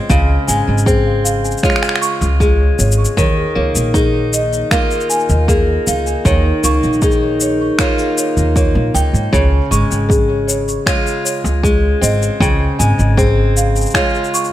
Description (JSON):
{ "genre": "folktronica", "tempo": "78 BPM", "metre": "4/4", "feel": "straight", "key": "Db major", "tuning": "A4 = 440 Hz", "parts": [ { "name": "marimba with soft mallets", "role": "second line", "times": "0.0-14.5 s", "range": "Ab4 to Db6", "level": "-19 LUFS", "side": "equal", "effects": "tape echo" }, { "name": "picked steel-string acoustic guitar", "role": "arpeggios", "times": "0.0-14.5 s", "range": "Db3 to F4", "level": "-18 LUFS", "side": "equal", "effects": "low-pass filter, digital delay" }, { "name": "upright bass", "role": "bass", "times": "0.1-13.8 s", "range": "Ab1 to Ab2", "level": "-16 LUFS", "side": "equal", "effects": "none" }, { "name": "electronic kick drum", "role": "drums", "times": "0.1-14.1 s", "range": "none", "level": "-16 LUFS", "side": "equal", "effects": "overdrive" }, { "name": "electronic shaker and finger snaps", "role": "drums", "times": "0.1-14.5 s", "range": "none", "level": "-20 LUFS", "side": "left 2 dB", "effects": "overdrive" } ], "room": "light reverb, studio ambience", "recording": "none", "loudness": "-12 LUFS", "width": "side -13 dB against mid", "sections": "0.0-14.5 A section", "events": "none", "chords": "0.0 Dbmaj7; 3.2 Ebsus2; 9.3 Dbmaj7" }